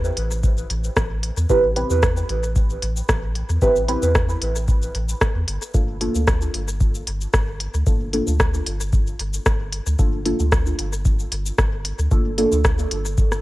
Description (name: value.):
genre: dub techno.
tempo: 113 BPM.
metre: 4/4.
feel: straight.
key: G dorian.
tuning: A4 = 440 Hz.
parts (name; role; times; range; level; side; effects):
soft dub sub bass; bass; 0.0-13.4 s; G1 to E2; -24 LUFS; equal; sidechain pumping.
deep house drum kit; drums; 0.0-13.4 s; cabasa, hi-hat, rim click; -25 LUFS; equal; dub echo.
electronic kick drum; drums; 0.4-13.3 s; none; -20 LUFS; equal; none.
deep mellow chord stab; stabs; 1.5-12.6 s; Bb3 to B4; -23 LUFS; right 2 dB; chorus, phaser, sidechain pumping, dub echo.
room: digital ambience.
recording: dry, gritty hardware recording, cassette tape.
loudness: -18 LUFS.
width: side -18 dB against mid.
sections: 0.0-13.4 A section.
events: none.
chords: 0.0 Am9; 5.7 Gm9.